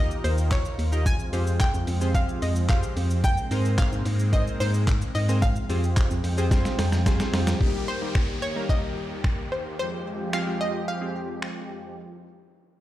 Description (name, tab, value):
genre	dance-pop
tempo	110 BPM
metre	4/4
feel	straight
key	F minor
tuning	A4 = 440 Hz
part	analog pluck	melody	0.0-11.7 s	C5 to Ab5	-32 LUFS	equal	chorus, ping-pong delay
part	chorused retro synth keys	accompaniment	0.0-11.6 s	G3 to Eb5	-32 LUFS	equal	sidechain pumping
part	filtered supersaw swell	sustained chords	0.0-11.9 s	Eb2 to Bb4	-34 LUFS	right 1 dB	sidechain pumping
part	organ-like FM bass	bass	0.0-7.5 s	Eb2 to Ab2	-24 LUFS	equal	sidechain pumping
part	dusty soul sampler-style drum kit	drums	0.1-11.6 s	finger snaps, handclaps, hi-hat, kick drum, shaker, snare drum	-25 LUFS	equal	none
part	downlifter	sound effects	7.6-12.0 s	none	-40 LUFS	equal	none
room	light reverb, digital ambience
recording	played on a big sound system in a bare room, large studio reverb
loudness	-22 LUFS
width	side -14 dB against mid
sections	0.0-7.6 A section; 7.6-12.0 B section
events	drum fill 6.5-7.6; break 10.9-12.0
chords	0.0 Eb; 1.1 Fmadd9; 3.2 Abadd9; 5.4 Fmadd9; 7.6 Eb; 9.8 Fmadd9